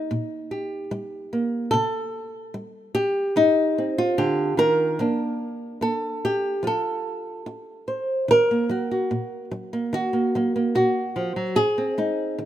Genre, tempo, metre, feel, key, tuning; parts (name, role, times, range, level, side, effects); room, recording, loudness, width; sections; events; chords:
folk, solo fingerstyle acoustic guitar; 73 BPM; 4/4; straight; A4 = 445 Hz
nylon-string guitar; solo; 0.0-12.5 s; G2 to C5; -22 LUFS; equal
light reverb, small room ambience; rough home demo mix; -21 LUFS; side -12 dB against mid
0.0-8.3 A section; 8.3-12.5 B section
0.0 Eb/Bb; 1.7 Cm; 5.0 Fsus4; 6.6 F; 8.3 Ebm; 11.6 Ab